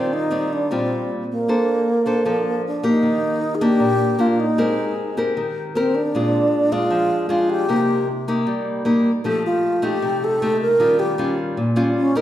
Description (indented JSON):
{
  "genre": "bossa nova",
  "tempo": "155 BPM",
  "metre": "4/4",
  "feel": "straight",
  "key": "Bb major, Eb major from 3.0 s",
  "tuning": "A4 = 438 Hz",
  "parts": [
    { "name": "wooden-headed alto flute", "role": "melody", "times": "0.0-12.2 s", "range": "Bb3 to Bb4", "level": "-20 LUFS", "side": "equal", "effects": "none" },
    { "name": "nylon-string guitar", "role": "accompaniment", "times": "0.0-12.2 s", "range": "Bb2 to C5", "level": "-20 LUFS", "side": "left 1 dB", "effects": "none" }
  ],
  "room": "wet recital hall reverb, RT60 1.6 s",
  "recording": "recorded in a church or concert hall",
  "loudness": "-17 LUFS",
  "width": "side -12 dB against mid",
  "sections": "0.0-3.0 A section; 3.0-12.2 B section",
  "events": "none",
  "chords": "0.0 Eb69; 1.5 Bbmaj9; 3.0 Ebmaj7; 4.6 Abmaj9; 6.1 Bb7; 7.7 Cm7; 9.2 F9; 10.8 Eb9"
}